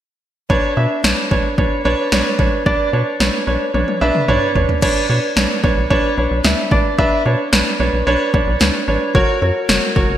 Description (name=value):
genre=synth-pop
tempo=111 BPM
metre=4/4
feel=straight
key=B minor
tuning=A4 = 435 Hz
part: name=warm concert grand piano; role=accompaniment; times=0.5-10.2 s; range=D4 to E5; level=-17 LUFS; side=right 1 dB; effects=none
part: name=rubbery square bass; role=bass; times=0.5-10.2 s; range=F#1 to B2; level=-20 LUFS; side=equal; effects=none
part: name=deep house drum kit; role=drums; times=0.5-10.1 s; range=crash cymbal, kick drum, snare drum, toms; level=-17 LUFS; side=equal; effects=overdrive, gated reverb
room=moderate lush hall reverb, RT60 1.8 s, digital ambience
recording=bright 1980s-style digital production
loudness=-14 LUFS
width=side -11 dB against mid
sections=0.5-4.8 A section; 4.8-10.2 B section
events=drum fill 3.7-4.8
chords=0.5 Bmadd9; 9.1 F#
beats=| 0.50 1.04 1.58 2.12 | 2.66 3.20 3.74 4.28 | 4.82 5.36 5.91 6.45 | 6.99 7.53 8.07 8.61 | 9.15 9.69